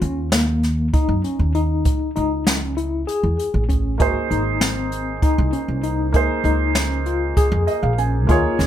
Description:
progressive instrumental, band music in an uneven meter; 196 BPM (eighths); 7/8; straight; A4 = 440 Hz
tine electric piano; arpeggios; 0.0-8.7 s; Bb3 to Ab4; -23 LUFS; left 3 dB; medium tremolo, ping-pong delay
upright bass; bass; 0.0-8.7 s; Ab1 to Gb2; -22 LUFS; equal
jazz brush drum kit; drums; 0.0-8.7 s; hi-hat, kick drum, snare drum; -20 LUFS; equal
warm baby grand piano; accompaniment; 4.0-8.7 s; Bb3 to Ab5; -23 LUFS; right 4 dB
light reverb; -17 LUFS; side -11 dB against mid
0.0-8.7 A section
grand piano fill 7.4-8.3
0.0 Eb7(no3); 1.9 Dbmadd9; 4.0 Ab7; 6.1 Db69
0.01 0.32 0.62 0.93 1.24 1.54 | 1.85 2.16 2.46 2.77 3.08 3.38 3.69 | 4.00 4.30 4.61 4.92 5.22 5.53 5.84 | 6.14 6.45 6.76 7.06 7.37 7.68 7.98 | 8.29 8.60

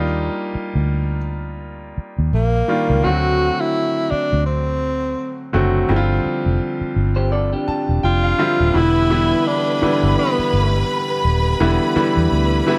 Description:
soul; 84 BPM; 4/4; swing 58% on 16ths; A4 = 439 Hz
clear baby grand piano; accompaniment; 0.0-12.8 s; D3 to A5; -23 LUFS; equal
vintage muted fingered electric bass; bass; 0.0-12.6 s; Eb1 to E2; -21 LUFS; equal
breathy tenor saxophone; melody; 2.3-10.9 s; Bb3 to F#4; -22 LUFS; equal; slapback echo
electric guitar through a small old amp; riff; 7.2-8.6 s; D4 to D5; -26 LUFS; equal
bright studio violin section; second line; 8.7-12.8 s; B4 to B5; -25 LUFS; equal
dark French horn section; sustained chords; 8.7-12.8 s; D3 to G4; -30 LUFS; equal
light reverb, small room ambience; -18 LUFS; mono
0.0-8.7 A section; 8.7-12.8 B section
grand piano fill 7.3-8.7
0.0 Ebmaj9; 3.0 D7; 5.9 G7sus4; 8.7 Em7
| 0.18 0.90 1.61 2.32 | 3.04 3.75 4.46 5.18 | 5.89 6.60 7.32 8.03 | 8.74 9.46 10.17 10.88 | 11.60 12.31

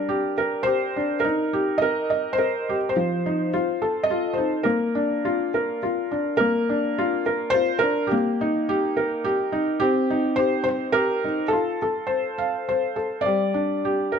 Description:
children's music, lullaby; 105 BPM; 3/4; straight; Bb major; A4 = 439 Hz
felt-muted upright piano; solo; 0.0-14.2 s; F3 to F5; -21 LUFS; equal
moderate recital hall reverb, RT60 1.3 s; close, detailed microphones; -21 LUFS; side -7 dB against mid
0.0-6.4 A section; 6.4-14.2 A section
0.0 Gm; 1.2 Eb; 2.9 F5; 3.5 F7; 4.6 Bb; 8.1 Eb/Bb; 9.8 Cm; 11.5 F; 13.2 G5
0.09 0.67 | 1.24 1.81 2.38 | 2.95 3.51 4.08 | 4.65 5.22 5.81 | 6.39 6.97 7.54 | 8.12 8.69 9.25 | 9.81 10.38 10.94 | 11.51 12.08 12.66 | 13.24 13.82

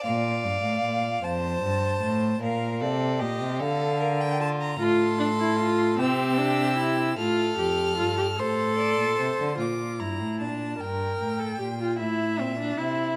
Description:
classical, baroque-style fugue for string quartet; 50 BPM (dotted quarters); 6/8; straight; Bb major; A4 = 439 Hz
rich violin; melody; 0.0-13.1 s; D5 to F6; -34 LUFS; equal
dark violin; second line; 0.0-9.6 s; F4 to D5; -32 LUFS; equal
warm cello; bass; 0.1-13.2 s; F2 to D3; -31 LUFS; equal
warm viola; accompaniment; 4.8-13.2 s; C4 to Bb4; -28 LUFS; equal
moderate recital hall reverb, RT60 1.4 s; -26 LUFS; mono
0.0-9.6 A section; 9.6-13.2 B section
0.1 Bb; 1.2 F; 2.4 Bb; 3.6 Bb/D; 4.8 F/A; 6.0 C; 7.2 F; 8.4 Amadd11; 9.6 Bb; 10.8 Gm9; 12.0 Am
| 0.05 1.24 | 2.41 3.60 | 4.80 5.99 | 7.19 8.39 | 9.60 10.80 | 11.98 13.16

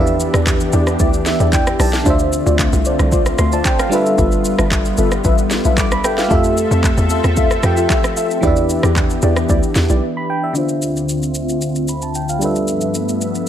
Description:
amapiano; 113 BPM; 4/4; straight; D dorian; A4 = 440 Hz
FM electric piano; accompaniment; 0.0-13.5 s; D3 to D6; -20 LUFS; right 1 dB; chorus, low-pass filter
warm analog pad; sustained chords; 0.0-13.5 s; D2 to E5; -22 LUFS; left 1 dB; chorus, low-pass filter
deep mellow chord stab; stabs; 0.0-10.0 s; E4 to E5; -21 LUFS; left 2 dB; chorus, phaser, tape echo
hollow log drum bass; bass; 0.0-10.0 s; G1 to F2; -18 LUFS; equal
afro-pop drum kit; drums; 0.1-13.5 s; handclaps, hi-hat, kick drum, rim click, shaker, snare drum; -19 LUFS; equal
light reverb; -13 LUFS; side -10 dB against mid
0.0-10.6 A section; 10.6-13.5 B section
drop 0.0-10.6; FM electric piano fill 1.0-2.1, 13.2; break 10.0-10.6; filter sweep 10.6-13.5
0.0 Em7; 2.1 Dm7; 3.9 G13; 6.3 Fmaj7; 8.4 Em7; 10.6 Dm7; 12.4 G13
0.47 1.00 1.53 | 2.06 2.59 3.12 3.65 | 4.18 4.71 5.25 5.78 | 6.31 6.84 7.37 7.90 | 8.43 8.96 9.49 10.02 | 10.55 11.09 11.62 12.15 | 12.68 13.21

